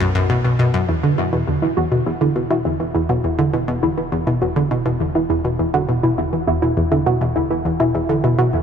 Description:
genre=ambient, sequencer-driven space music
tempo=102 BPM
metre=4/4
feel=straight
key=unclear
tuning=A4 = 440 Hz
part: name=analog pluck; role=riff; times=0.0-8.6 s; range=E2 to E3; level=-18 LUFS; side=equal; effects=chorus, analog delay
part: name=fat analog bass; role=bass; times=0.0-8.6 s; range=E1 to B1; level=-34 LUFS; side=equal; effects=none
part: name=warbly dusty pluck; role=arpeggios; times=0.9-8.5 s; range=E4 to F#4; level=-21 LUFS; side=moving between left 2 dB and right 4 dB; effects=chorus, auto-pan, analog delay
room=moderate huge ambient reverb, RT60 7.7 s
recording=none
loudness=-16 LUFS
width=side -7 dB against mid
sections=0.9-8.6 A section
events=filter sweep on synth arpeggio sound 0.9-8.6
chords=0.0 B5; 0.9 Esus2

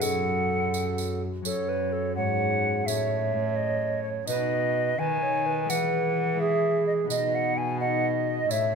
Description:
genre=classical, renaissance-style consort dance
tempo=85 BPM (dotted quarters)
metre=6/8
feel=straight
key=F# dorian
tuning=A4 = 439 Hz
part: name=hollow concert flute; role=melody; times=0.0-8.8 s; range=C#5 to G#5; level=-28 LUFS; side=left 1 dB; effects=none
part: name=mellow hollow tenor recorder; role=second line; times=0.0-8.8 s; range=G#4 to D#5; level=-29 LUFS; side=right 7 dB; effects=none
part: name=concert harp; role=accompaniment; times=0.0-8.8 s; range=F#2 to E5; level=-32 LUFS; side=left 9 dB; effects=none
part: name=rich cello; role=bass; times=0.0-8.8 s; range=F#2 to E3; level=-32 LUFS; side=right 1 dB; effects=none
part: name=tambourine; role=percussion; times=0.0-8.7 s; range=none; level=-35 LUFS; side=right 7 dB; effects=none
room=moderate stone room reverb, RT60 0.9 s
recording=minimal, uncompressed stereo recording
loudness=-24 LUFS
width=side -5 dB against mid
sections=0.0-1.5 A section; 1.5-8.8 B section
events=none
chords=0.0 F#m; 2.9 A; 4.3 B; 5.7 E; 7.1 B

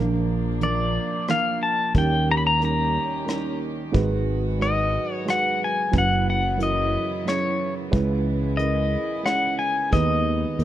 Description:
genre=acoustic folk-pop ballad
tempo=90 BPM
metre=3/4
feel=straight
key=G# minor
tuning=A4 = 440 Hz
part: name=felt-muted upright piano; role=accompaniment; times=0.0-10.6 s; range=F#1 to C#5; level=-26 LUFS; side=right 4 dB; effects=none
part: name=warm chamber string section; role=sustained chords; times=0.0-10.6 s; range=C#3 to G4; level=-34 LUFS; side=left 1 dB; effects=none
part: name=fingered electric bass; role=bass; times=0.0-10.6 s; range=F#1 to D#2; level=-24 LUFS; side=equal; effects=none
part: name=pedal steel guitar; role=melody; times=0.6-10.6 s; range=C#5 to B5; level=-23 LUFS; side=left 2 dB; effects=none
part: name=soft brush drum kit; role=drums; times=0.6-10.6 s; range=hi-hat, kick drum, rim click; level=-26 LUFS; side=equal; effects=none
room=light reverb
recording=none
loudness=-20 LUFS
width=side -12 dB against mid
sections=0.0-10.6 A section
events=none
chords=0.0 A#; 1.9 D#7; 3.9 G#m7; 5.9 F#7sus4; 7.9 C#m7; 9.9 G#m/D#

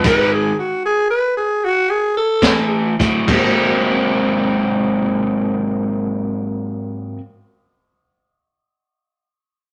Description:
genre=electric blues shuffle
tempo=68-80 BPM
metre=4/4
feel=swing 68% on 8ths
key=Ab mixolydian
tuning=A4 = 441 Hz
part: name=growling tenor saxophone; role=melody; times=0.0-3.0 s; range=Gb4 to Cb5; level=-19 LUFS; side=equal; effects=none
part: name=overdriven electric guitar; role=riff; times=0.0-7.2 s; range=Ab2 to C4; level=-20 LUFS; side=equal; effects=spring reverb
part: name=fingered electric bass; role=bass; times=0.0-7.1 s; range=Ab1 to A2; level=-32 LUFS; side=equal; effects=none
part: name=crunchy breakbeat drum kit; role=drums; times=0.0-3.6 s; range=crash cymbal, hi-hat, kick drum, snare drum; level=-21 LUFS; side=equal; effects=none
part: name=reed electric piano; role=accompaniment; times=3.2-7.2 s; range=Ab2 to Gb4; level=-28 LUFS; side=equal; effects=overdrive, fast tremolo
room=moderate studio reverb, RT60 0.6 s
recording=none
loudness=-18 LUFS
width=mono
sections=0.0-3.3 A section; 3.3-6.8 B section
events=slowing down 0.0-3.3; tenor saxophone solo 0.0-3.3; stop 0.0-2.4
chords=0.0 Ab5; 2.4 A5; 3.3 Ab9

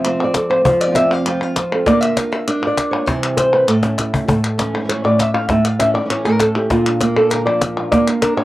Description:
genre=flamenco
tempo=198 BPM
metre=4/4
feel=straight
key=unclear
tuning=A4 = 440 Hz
part: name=flamenco guitar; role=melody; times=0.0-8.4 s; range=A2 to G5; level=-15 LUFS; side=equal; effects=cassette tape
part: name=flamenco guitar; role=stabs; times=0.0-8.4 s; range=F2 to F4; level=-25 LUFS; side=right 2 dB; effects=none
part: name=palmas hand claps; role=percussion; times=0.0-8.4 s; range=none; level=-24 LUFS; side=left 2 dB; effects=none
part: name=cajon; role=percussion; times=0.3-8.4 s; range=none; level=-21 LUFS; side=left 2 dB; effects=none
room=wet booth ambience, RT60 0.2 s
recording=home recording on cassette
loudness=-14 LUFS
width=side -16 dB against mid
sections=0.0-4.3 A section; 4.3-8.4 B section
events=drum fill 3.8-4.3; nylon-string guitar solo 4.3-8.4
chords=0.0 F; 1.9 Bb; 3.1 C; 3.7 A; 6.7 Bb

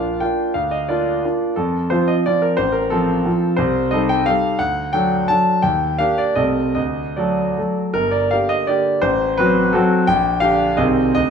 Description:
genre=classical, romantic triple-time dance for piano with dotted rhythms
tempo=143-187 BPM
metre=3/4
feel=rubato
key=G minor from 3.6 s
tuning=A4 = 437 Hz
part: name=clear concert grand piano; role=solo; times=0.0-11.3 s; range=G1 to A5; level=-16 LUFS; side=equal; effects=none
room=wet large studio reverb, RT60 1.1 s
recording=heard from further back in the room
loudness=-16 LUFS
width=side -6 dB against mid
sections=0.0-8.0 A section; 8.0-11.3 B section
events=none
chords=0.0 Bb; 0.5 Bb/D; 1.6 F; 2.6 F/A; 3.6 Am7b5/C; 4.6 D; 5.6 Ebmaj7; 6.4 Adim/C; 6.8 D; 8.0 Gm; 9.0 F#dim/A; 10.1 Gm/Bb; 10.8 Ab/C

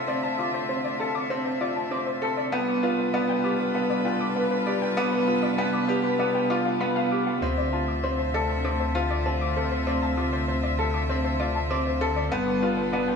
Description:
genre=piano and strings electronica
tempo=98 BPM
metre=4/4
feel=straight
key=D dorian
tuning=A4 = 440 Hz
part: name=muted string quartet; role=sustained chords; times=0.0-13.2 s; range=D3 to E5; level=-29 LUFS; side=right 1 dB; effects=none
part: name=clear baby grand piano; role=riff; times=0.0-13.2 s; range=B3 to A4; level=-26 LUFS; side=equal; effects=tape echo
part: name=dark detuned saw bass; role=bass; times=0.0-13.2 s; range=G1 to D2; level=-32 LUFS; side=equal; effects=high-pass filter
part: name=warbly dusty pluck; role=arpeggios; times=0.1-13.1 s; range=B4 to D6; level=-31 LUFS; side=left 2 dB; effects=chorus, tape echo
room=wet echo chamber reverb, RT60 1.8 s, studio reverb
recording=small room ambience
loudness=-23 LUFS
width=side -5 dB against mid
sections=0.0-7.4 A section; 7.4-13.2 B section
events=build-up 0.0-7.4; drop 7.4-13.2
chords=0.0 Dm7; 2.5 G7; 7.4 Dm7; 12.3 G7

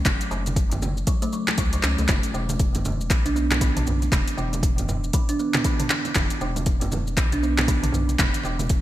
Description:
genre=afro house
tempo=118 BPM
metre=4/4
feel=swing 60% on 16ths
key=unclear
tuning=A4 = 440 Hz
part: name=round analog bass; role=bass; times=0.0-8.8 s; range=E1 to C#2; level=-27 LUFS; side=equal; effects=sidechain pumping
part: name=kalimba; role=arpeggios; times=0.1-8.5 s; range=B2 to D4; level=-28 LUFS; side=right 2 dB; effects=sidechain pumping, low-pass filter, ping-pong delay
part: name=deep house drum kit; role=drums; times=0.1-8.8 s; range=handclaps, hi-hat, shaker, toms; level=-26 LUFS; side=equal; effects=studio reverb, gated reverb
part: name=electronic kick drum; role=drums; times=0.1-8.8 s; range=none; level=-23 LUFS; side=equal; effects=overdrive, studio reverb
part: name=congas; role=percussion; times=0.1-8.8 s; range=none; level=-32 LUFS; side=right 2 dB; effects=none
room=light reverb, digital ambience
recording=bright 1980s-style digital production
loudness=-20 LUFS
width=side -14 dB against mid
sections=0.0-8.8 A section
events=filter sweep on kalimba 0.0-8.8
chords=0.0 F#5; 2.1 E5

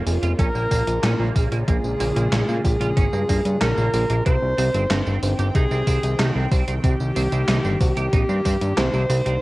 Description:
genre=synthwave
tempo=93 BPM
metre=4/4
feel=straight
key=C phrygian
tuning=A4 = 436 Hz
part: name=breathy alto saxophone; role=melody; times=0.0-9.4 s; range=G4 to C5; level=-25 LUFS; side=equal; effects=cassette tape, analog delay
part: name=phased analog pad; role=sustained chords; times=0.0-9.4 s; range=Db3 to G5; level=-30 LUFS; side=equal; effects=phaser, chorus, sidechain pumping, cassette tape
part: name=clean electric guitar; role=riff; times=0.0-9.3 s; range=Bb3 to G4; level=-32 LUFS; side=right 6 dB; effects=ensemble chorus, cassette tape, analog delay
part: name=fat analog bass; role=bass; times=0.0-9.4 s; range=F1 to Bb2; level=-22 LUFS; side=equal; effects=none
part: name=thumb-piano-like synth pluck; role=arpeggios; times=0.1-9.4 s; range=Bb3 to C5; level=-34 LUFS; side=right 6 dB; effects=chorus, cassette tape, analog delay
part: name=gated 80s digital drum machine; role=drums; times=0.1-9.4 s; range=handclaps, hi-hat, snare drum, tambourine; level=-28 LUFS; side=equal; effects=gated reverb, gated reverb snare, overdrive, cassette tape
part: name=electronic kick drum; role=drums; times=0.4-8.6 s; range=none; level=-21 LUFS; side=equal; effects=overdrive, cassette tape
room=light reverb, digital ambience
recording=home recording on cassette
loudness=-18 LUFS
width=side -19 dB against mid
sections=0.0-9.4 A section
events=none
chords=0.0 Bbm7; 4.3 Cm

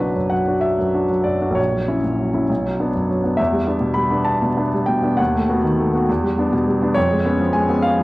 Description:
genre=classical, romantic character piece for solo piano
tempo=67 BPM (dotted quarters)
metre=6/8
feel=rubato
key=B minor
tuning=A4 = 440 Hz
part: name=clear grand piano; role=solo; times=0.0-8.0 s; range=A#1 to B5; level=-16 LUFS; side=equal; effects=none
room=moderate recital hall reverb, RT60 1.8 s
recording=worn, warbling old tape, cassette tape, vinyl crackle, warbly pitch drift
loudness=-16 LUFS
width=side -20 dB against mid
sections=0.0-8.0 A section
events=none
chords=0.0 Bm; 1.6 F#7/A#; 2.5 Bm; 3.4 Em7; 5.2 B7/D#; 6.1 Em7; 7.0 C#7/E#

